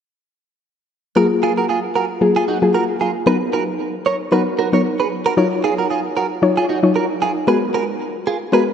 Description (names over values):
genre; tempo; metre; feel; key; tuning
afrobeats; 114 BPM; 4/4; swing 55% on 16ths; F# major; A4 = 441 Hz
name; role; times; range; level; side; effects
soft round pluck; accompaniment; 1.2-8.7 s; F#3 to C#5; -17 LUFS; left 2 dB; chorus
direct-recorded clean electric guitar; riff; 1.2-8.6 s; D#4 to C#5; -20 LUFS; right 5 dB; analog chorus, diffuse ambient delay
room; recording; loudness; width
wet plate reverb, RT60 3.4 s; dreamy mix soaked in reverb; -16 LUFS; side -8 dB against mid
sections
1.2-8.7 A section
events
none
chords
1.2 F#maj9; 3.3 Bmaj7; 5.4 D#m9; 7.5 G#m9